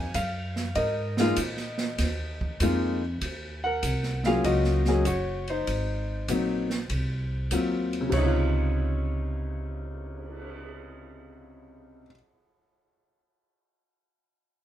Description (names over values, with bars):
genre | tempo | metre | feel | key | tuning
jazz piano trio | 98 BPM | 4/4 | swing 69% on 8ths | Db major | A4 = 436 Hz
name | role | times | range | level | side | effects
warm concert grand piano | melody | 0.0-12.1 s | C3 to Ab5 | -28 LUFS | left 1 dB | none
upright bass | bass | 0.0-12.0 s | Gb1 to Bb2 | -29 LUFS | equal | none
open jazz drum kit | drums | 0.1-10.5 s | crash cymbal, cymbal swell, hi-hat, kick drum, ride cymbal, snare drum | -34 LUFS | right 2 dB | none
room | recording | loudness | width
moderate studio reverb, RT60 0.8 s | band playing live in one room | -25 LUFS | side -11 dB against mid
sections
0.0-3.2 A section; 3.2-8.1 B section; 8.1-10.6 C section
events
none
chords
0.0 Db69 (rootless); 3.2 Ebm7; 5.7 Ab7; 8.1 Dbmaj9